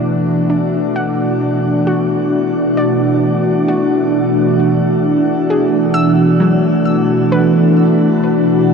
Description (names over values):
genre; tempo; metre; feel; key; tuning
ambient; 66 BPM; 4/4; straight; B dorian; A4 = 442 Hz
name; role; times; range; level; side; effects
glassy FM pad; sustained chords; 0.0-8.7 s; B2 to F#4; -12 LUFS; equal; ensemble chorus, built-in reverb
soft round pluck; arpeggios; 0.5-8.7 s; F#3 to E6; -22 LUFS; equal; chorus, cassette tape, ping-pong delay
room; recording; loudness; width
wet shimmer reverb, RT60 6.3 s; dark, warm production; -11 LUFS; side -5 dB against mid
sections
0.0-8.7 A section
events
fade-in on synth pluck 0.0-8.7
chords
0.0 Bm7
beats
| 0.04 0.95 1.86 2.77 | 3.68 4.59 5.50 6.41 | 7.32 8.23